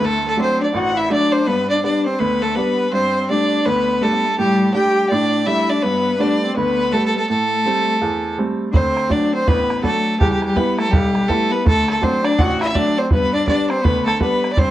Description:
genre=celtic folk, Celtic hornpipe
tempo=165 BPM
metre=4/4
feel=swing 61% on 8ths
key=unclear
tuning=A4 = 440 Hz
part: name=rich fiddle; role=melody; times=0.0-14.7 s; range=G4 to G5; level=-19 LUFS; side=equal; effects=none
part: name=warm cello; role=second line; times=0.0-14.7 s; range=F#3 to G4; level=-21 LUFS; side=left 3 dB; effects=none
part: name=bright upright piano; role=accompaniment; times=0.0-14.7 s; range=A1 to E4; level=-22 LUFS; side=right 2 dB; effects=none
part: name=bodhran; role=percussion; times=8.7-14.7 s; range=none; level=-19 LUFS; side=right 1 dB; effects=none
room=moderate spring reverb, RT60 1.9 s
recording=worn, warbling old tape, cassette tape, warbly pitch drift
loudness=-15 LUFS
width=side -13 dB against mid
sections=0.0-8.7 A section; 8.7-14.7 A section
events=none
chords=0.0 D; 1.5 G; 2.9 Gsus2; 4.4 Dsus4/A; 5.8 Gadd9; 7.3 Am7; 8.7 D; 10.2 Em; 11.7 D; 13.1 G

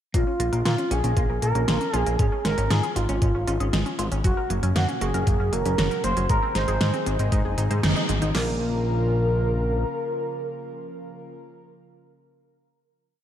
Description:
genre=synthwave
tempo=117 BPM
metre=4/4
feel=straight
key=Bb minor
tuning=A4 = 440 Hz
part: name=expressive synth lead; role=melody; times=0.1-11.3 s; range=F4 to C5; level=-28 LUFS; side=right 1 dB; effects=lush chorus, tape echo
part: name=analog pluck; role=arpeggios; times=0.1-8.6 s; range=Ab3 to C5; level=-33 LUFS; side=right 1 dB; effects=chorus, tape echo, slapback echo
part: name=clean electric guitar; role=riff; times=0.1-8.6 s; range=Gb3 to Ab4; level=-34 LUFS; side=right 1 dB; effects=analog chorus, tape echo, slapback echo
part: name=fat analog bass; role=bass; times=0.1-9.8 s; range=Gb1 to Bb2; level=-25 LUFS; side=equal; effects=tube saturation
part: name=pop drum kit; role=drums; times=0.1-8.5 s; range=crash cymbal, kick drum, snare drum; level=-24 LUFS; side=equal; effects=none
part: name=pop drum kit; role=drums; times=0.1-8.3 s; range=hi-hat, snare drum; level=-28 LUFS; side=equal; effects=none
part: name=lush unison pad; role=sustained chords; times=4.2-11.3 s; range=Bb2 to Bb4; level=-32 LUFS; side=left 1 dB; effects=chorus, sidechain pumping
room=moderate concert hall reverb, RT60 2.3 s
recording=big arena sound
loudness=-21 LUFS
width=side -10 dB against mid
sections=0.1-8.3 verse; 8.3-12.4 final chord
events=band accent 7.8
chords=0.1 Bbm; 2.2 Db/Ab; 4.2 Gb; 6.3 Ab; 8.3 Bbm

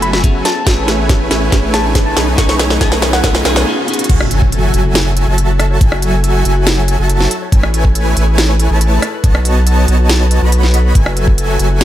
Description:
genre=future bass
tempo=140 BPM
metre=4/4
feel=half-time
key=F# dorian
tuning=A4 = 439 Hz
part: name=soft struck synth lead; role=melody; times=0.0-3.3 s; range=F#5 to C#6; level=-22 LUFS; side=left 1 dB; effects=chorus, sidechain pumping, ping-pong delay
part: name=clean electric guitar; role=accompaniment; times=0.0-4.1 s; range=A3 to G#5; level=-22 LUFS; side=left 3 dB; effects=harmonic tremolo, sidechain pumping, ping-pong delay
part: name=supersaw chords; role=riff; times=0.0-11.8 s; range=F#3 to B5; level=-18 LUFS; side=right 1 dB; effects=sidechain pumping
part: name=saturated sub bass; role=bass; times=0.0-11.8 s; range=F#1 to B1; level=-14 LUFS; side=equal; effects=sidechain pumping
part: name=trap drum kit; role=drums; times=0.0-11.8 s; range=crash cymbal, hi-hat, rim click, snare drum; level=-17 LUFS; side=equal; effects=none
part: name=riser and impact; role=sound effects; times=0.1-5.8 s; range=none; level=-22 LUFS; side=right 1 dB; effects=none
part: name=electronic kick drum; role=drums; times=0.2-11.4 s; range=none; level=-12 LUFS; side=equal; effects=none
part: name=Celtic harp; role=arpeggios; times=4.1-11.8 s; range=D#4 to C#5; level=-25 LUFS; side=left 6 dB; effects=sidechain pumping, ping-pong delay
part: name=airy dreamy lead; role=arpeggios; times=4.1-11.8 s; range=G#5 to B5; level=-25 LUFS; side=equal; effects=chorus, sidechain pumping, ping-pong delay
room=light reverb, digital ambience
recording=none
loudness=-10 LUFS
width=side -12 dB against mid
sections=0.0-4.1 A section; 4.1-11.8 B section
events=build-up 0.0-4.1; drum fill 0.0-3.7, 3.9; riser 0.1-4.1; break 3.7-4.1; drop 4.1-11.8; impact 4.1-5.8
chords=0.5 Amaj7; 2.2 B7; 4.1 F#m7; 7.3 Amaj7; 9.0 B7; 11.0 F#m7

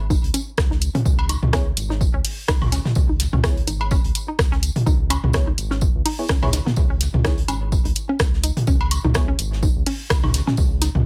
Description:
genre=minimal techno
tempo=126 BPM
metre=4/4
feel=swing 56% on 16ths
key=C# minor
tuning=A4 = 440 Hz
part: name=round analog bass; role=bass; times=0.0-11.1 s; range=G#1 to C#2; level=-25 LUFS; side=equal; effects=sidechain pumping
part: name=hollow square pluck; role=riff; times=0.1-10.9 s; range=B3 to D#4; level=-29 LUFS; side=equal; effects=chorus, phaser, sidechain pumping, digital delay
part: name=electronic kick drum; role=drums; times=0.1-10.7 s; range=none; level=-24 LUFS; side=equal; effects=none
part: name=loose indie drum kit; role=drums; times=0.1-10.9 s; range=hi-hat, snare drum, tambourine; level=-37 LUFS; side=equal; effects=sidechain pumping on hats, high-pass filter on hats, high-pass filter on snare, sidechain pumping on perc, high-pass filter on perc, high-pass filter on room
part: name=techno drum kit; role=drums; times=0.3-10.9 s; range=hi-hat, rim click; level=-25 LUFS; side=equal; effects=overdrive
part: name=electronic toms, cowbell and woodblock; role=percussion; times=0.9-11.0 s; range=none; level=-27 LUFS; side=equal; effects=none
part: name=wavetable chord stab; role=stabs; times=1.5-9.3 s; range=B3 to C#5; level=-34 LUFS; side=equal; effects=digital delay
room=little or no reverb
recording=none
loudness=-20 LUFS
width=mono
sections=0.0-11.1 A section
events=none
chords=0.0 C#5

